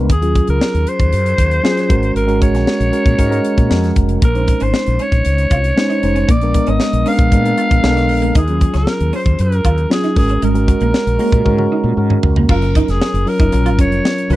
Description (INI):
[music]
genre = polished 1980s jazz-funk pop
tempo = 116 BPM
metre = 4/4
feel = straight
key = Bb minor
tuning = A4 = 441 Hz
[part]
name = mellow tine electric piano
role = accompaniment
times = 0.0-14.4 s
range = Gb3 to C5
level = -18 LUFS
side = equal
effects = lush chorus
[part]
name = mellow fretless electric bass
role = bass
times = 0.0-14.4 s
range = F1 to Bb2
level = -16 LUFS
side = equal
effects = lush chorus
[part]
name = growling alto saxophone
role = melody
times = 0.1-14.4 s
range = Ab4 to F5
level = -20 LUFS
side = equal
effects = none
[part]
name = tight funk drum kit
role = drums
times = 0.1-14.4 s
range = crash cymbal, hi-hat, kick drum, snare drum, toms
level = -16 LUFS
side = equal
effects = none
[part]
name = clean electric guitar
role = riff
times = 4.2-14.4 s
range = Ab3 to F4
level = -23 LUFS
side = right 2 dB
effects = ensemble chorus
[sound]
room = little or no reverb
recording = dry, close 1970s-style studio recording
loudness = -12 LUFS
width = side -16 dB against mid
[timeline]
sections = 0.0-12.5 A section; 12.5-14.4 B section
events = drum fill 11.5-12.5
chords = 0.1 Ebm11; 1.9 Ab9sus4; 4.2 Bbm11; 6.3 Bb7b9; 8.4 Ebm11; 10.2 Ab9sus4; 12.5 Gbmaj7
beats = | 0.10 0.61 1.13 1.64 | 2.16 2.67 3.19 3.71 | 4.22 4.74 5.26 5.77 | 6.29 6.81 7.32 7.84 | 8.36 8.87 9.39 9.91 | 10.43 10.94 11.46 11.98 | 12.50 13.01 13.53 14.05